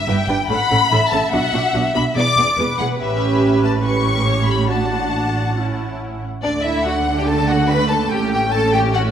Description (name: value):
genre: quick classical-period movement for string orchestra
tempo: 143 BPM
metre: 4/4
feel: straight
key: D major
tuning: A4 = 440 Hz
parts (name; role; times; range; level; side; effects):
- warm symphonic violin section; melody; 0.0-9.0 s; D5 to D6; -20 LUFS; left 4 dB; none
- warm symphonic violin section; second line; 0.0-9.1 s; D4 to G5; -23 LUFS; left 1 dB; none
- warm symphonic viola section; accompaniment; 0.1-9.1 s; A3 to B4; -22 LUFS; right 2 dB; none
- dark symphonic double bass section; bass; 0.1-9.1 s; E1 to D2; -24 LUFS; right 3 dB; none
- warm symphonic cello section; bass; 0.1-9.1 s; E2 to D3; -24 LUFS; right 3 dB; none
room: wet scoring stage reverb, RT60 1.6 s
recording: none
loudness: -15 LUFS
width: side -9 dB against mid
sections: 0.0-6.4 A section; 6.4-9.1 B section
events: none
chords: 0.5 A; 1.3 Bm; 2.2 E7; 3.0 A7; 4.7 D/A; 5.6 A; 6.4 D5; 8.1 A